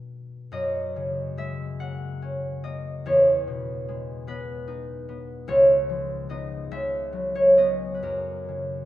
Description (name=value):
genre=classical, solo harp piece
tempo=48 BPM (dotted quarters)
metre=6/8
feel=uneven beats, rubato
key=F# mixolydian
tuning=A4 = 437 Hz
part: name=concert harp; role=solo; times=0.0-8.9 s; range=C#2 to F#5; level=-23 LUFS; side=equal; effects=none
room=moderate recital hall reverb, RT60 1.7 s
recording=none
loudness=-22 LUFS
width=side -14 dB against mid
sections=0.0-8.9 A section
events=none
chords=0.0 Bm6; 0.5 F#69; 3.1 Emaj7; 5.5 C#9; 6.7 C#9sus4; 8.0 F#6